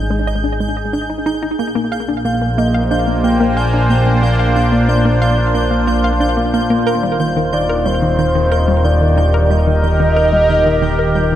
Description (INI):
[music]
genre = ambient, sequencer-driven space music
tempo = 91 BPM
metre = 4/4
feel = straight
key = unclear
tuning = A4 = 442 Hz
[part]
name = sweeping resonant pad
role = sustained chords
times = 0.0-11.4 s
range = Bb2 to C5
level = -18 LUFS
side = equal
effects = chorus
[part]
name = fat analog bass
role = bass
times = 0.0-11.4 s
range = Eb1 to Bb1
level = -17 LUFS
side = equal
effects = none
[part]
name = pulsing gated texture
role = texture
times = 0.0-11.4 s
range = G6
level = -27 LUFS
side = right 1 dB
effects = chorus, built-in reverb
[part]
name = hollow square pluck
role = riff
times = 0.1-11.4 s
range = Eb3 to F5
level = -20 LUFS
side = equal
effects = chorus, tape echo
[part]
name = soft octave-layered synth lead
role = melody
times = 2.2-11.4 s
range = C5 to Ab5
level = -18 LUFS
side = equal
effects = chorus, vintage 12-bit sampler grit, tape echo
[sound]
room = wet spring reverb, RT60 2.9 s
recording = echo-heavy mix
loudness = -12 LUFS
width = side -12 dB against mid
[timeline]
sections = 0.0-11.4 A section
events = none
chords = 0.0 Ab5; 1.6 Bbadd9; 6.9 Ebadd9